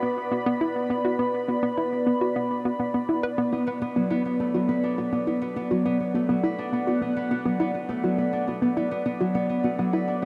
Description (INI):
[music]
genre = ambient, sequencer-driven space music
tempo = 103 BPM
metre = 4/4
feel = straight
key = B minor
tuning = A4 = 439 Hz
[part]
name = sweeping resonant pad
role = sustained chords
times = 0.0-10.3 s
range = B3 to B5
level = -29 LUFS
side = equal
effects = chorus, shimmer reverb
[part]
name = hollow square pluck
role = riff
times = 0.0-10.3 s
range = B3 to B4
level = -30 LUFS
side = equal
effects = chorus, cassette tape, delay, shimmer reverb
[part]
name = concert harp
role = arpeggios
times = 3.5-10.3 s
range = F#3 to B4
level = -31 LUFS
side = equal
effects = delay
[sound]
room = wet huge ambient reverb, RT60 8.6 s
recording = none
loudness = -25 LUFS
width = mono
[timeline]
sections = 0.0-10.3 A section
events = none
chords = 0.0 Bm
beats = 0.03 0.61 | 1.20 1.78 2.36 2.94 | 3.53 4.11 4.69 5.27 | 5.86 6.44 7.02 7.60 | 8.19 8.77 9.35 9.93